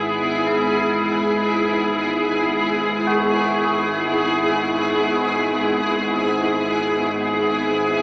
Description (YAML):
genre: dark ambient drone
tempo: free time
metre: none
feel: none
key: unclear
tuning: A4 = 443 Hz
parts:
  - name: granular cloud pad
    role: sustained chords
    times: 0.0-8.0 s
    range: B3 to E5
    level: -21 LUFS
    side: equal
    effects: built-in reverb
  - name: tubular bells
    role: arpeggios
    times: 0.0-8.0 s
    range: D4 to F#4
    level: -30 LUFS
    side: equal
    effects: diffuse ambient delay
  - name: analog drone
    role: drone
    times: 0.0-8.0 s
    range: G#1 to G#2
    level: -28 LUFS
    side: equal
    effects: chorus
room: wet huge ambient reverb, RT60 8.0 s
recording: AM radio sound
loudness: -20 LUFS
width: mono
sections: 0.0-8.0 A section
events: none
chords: 0.0 E